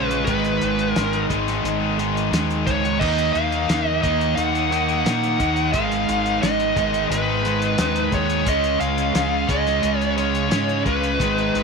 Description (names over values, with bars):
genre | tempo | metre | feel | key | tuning
classic rock | 88 BPM | 4/4 | straight | G# dorian | A4 = 442 Hz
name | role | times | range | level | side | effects
dark smooth lead guitar | melody | 0.0-11.6 s | B4 to F#5 | -23 LUFS | right 1 dB | overdrive, slapback echo
cranked stack guitar | riff | 0.0-11.6 s | G#2 to E#4 | -27 LUFS | left 14 dB | overdrive, spring reverb
cranked stack guitar | riff | 0.0-11.6 s | G#2 to D#4 | -25 LUFS | left 1 dB | overdrive
overdriven semi-hollow guitar | riff | 0.0-11.6 s | G#2 to D#4 | -26 LUFS | right 12 dB | none
deep dub fingered electric bass | bass | 0.0-11.6 s | G#1 to A#2 | -27 LUFS | left 1 dB | none
cloth-damped thuddy drum kit | drums | 0.1-11.6 s | crash cymbal, hi-hat, kick drum, snare drum | -27 LUFS | equal | none
room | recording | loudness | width
light reverb, small room ambience | 1960s-style stereo with parts hard left and right | -18 LUFS | side -4 dB against mid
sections
0.0-11.6 A section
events
none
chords
0.3 G#m; 3.0 D#m; 5.7 G#m; 8.5 C#